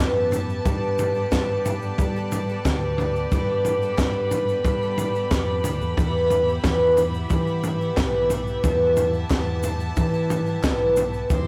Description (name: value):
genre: indie folk with a building arrangement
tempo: 90 BPM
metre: 4/4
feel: straight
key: E minor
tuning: A4 = 439 Hz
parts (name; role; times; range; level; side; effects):
- picked twelve-string acoustic guitar; accompaniment; 0.0-11.5 s; E2 to A4; -26 LUFS; equal; none
- warm chamber string section; sustained chords; 0.0-11.5 s; G4 to C6; -36 LUFS; equal; none
- fingered electric bass; bass; 0.0-11.5 s; B1 to G3; -31 LUFS; equal; none
- compact cocktail drum kit; drums; 0.3-11.5 s; kick drum, snare drum, toms; -27 LUFS; equal; none
- tube shaker; percussion; 0.3-11.5 s; none; -45 LUFS; equal; none
- group handclap; percussion; 1.3-10.8 s; none; -40 LUFS; equal; none
room: light reverb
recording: rough rehearsal-room recording, warm saturation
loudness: -23 LUFS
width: mono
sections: 0.0-11.5 A section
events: none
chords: 0.0 Em; 0.7 Gadd9; 6.0 Em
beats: 0.00 | 0.66 1.33 1.99 2.65 | 3.32 3.98 4.65 5.32 | 5.98 6.64 7.31 7.97 | 8.64 9.30 9.97 10.63 | 11.30